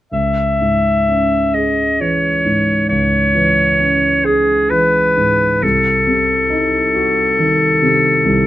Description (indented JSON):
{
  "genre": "classical, romantic duo for clarinet and grand piano",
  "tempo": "42-47 BPM (dotted quarters)",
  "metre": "12/8",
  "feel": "rubato",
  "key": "C# minor",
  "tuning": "A4 = 444 Hz",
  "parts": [
    { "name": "bright clarinet", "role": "melody", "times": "0.1-8.5 s", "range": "G#4 to E5", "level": "-14 LUFS", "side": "left 1 dB", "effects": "none" },
    { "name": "dark concert grand piano", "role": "accompaniment", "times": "0.1-8.5 s", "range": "C2 to G#4", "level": "-17 LUFS", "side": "right 1 dB", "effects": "none" }
  ],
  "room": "light reverb",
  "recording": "none",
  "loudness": "-12 LUFS",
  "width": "side -14 dB against mid",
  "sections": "0.1-8.5 A section",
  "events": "none",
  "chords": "0.1 C#m; 5.6 Cdim7"
}